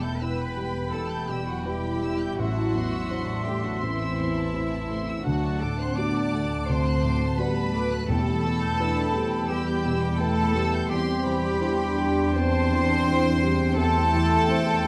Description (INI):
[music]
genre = cinematic, emotional film score for orchestra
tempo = 84 BPM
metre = 4/4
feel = rubato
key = E minor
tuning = A4 = 440 Hz
[part]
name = dark studio violin section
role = melody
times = 0.0-14.9 s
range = E5 to G6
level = -41 LUFS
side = equal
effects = none
[part]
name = bright small flute group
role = second line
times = 0.0-14.9 s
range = A5 to C6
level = -41 LUFS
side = equal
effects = none
[part]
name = warm clarinet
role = second line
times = 0.0-14.9 s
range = E5 to G5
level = -39 LUFS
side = equal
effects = none
[part]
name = warm symphonic violin section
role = second line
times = 0.0-14.9 s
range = E5 to D6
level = -38 LUFS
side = equal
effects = none
[part]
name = dark grand piano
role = accompaniment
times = 0.0-14.9 s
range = A1 to D5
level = -32 LUFS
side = equal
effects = none
[part]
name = mellow French horn section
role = sustained chords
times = 0.0-14.9 s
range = E3 to D4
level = -34 LUFS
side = equal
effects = none
[part]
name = dark symphonic double bass section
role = bass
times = 0.0-14.9 s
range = E1 to E2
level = -31 LUFS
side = equal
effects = none
[part]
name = rich symphonic cello section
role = bass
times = 0.0-14.9 s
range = E4 to D5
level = -32 LUFS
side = equal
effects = none
[part]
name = timpani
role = percussion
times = 0.0-0.5, 8.1-9.1 s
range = E2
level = -34 LUFS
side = equal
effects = none
[part]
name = dark symphonic viola section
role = accompaniment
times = 0.9-14.9 s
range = F#3 to E4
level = -34 LUFS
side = equal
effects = none
[sound]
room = light reverb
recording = close, detailed microphones, vinyl crackle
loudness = -25 LUFS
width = mono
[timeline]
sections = 0.0-14.9 A section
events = none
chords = 0.0 Emadd9; 2.4 Am; 5.3 D; 8.1 Em; 10.9 C/E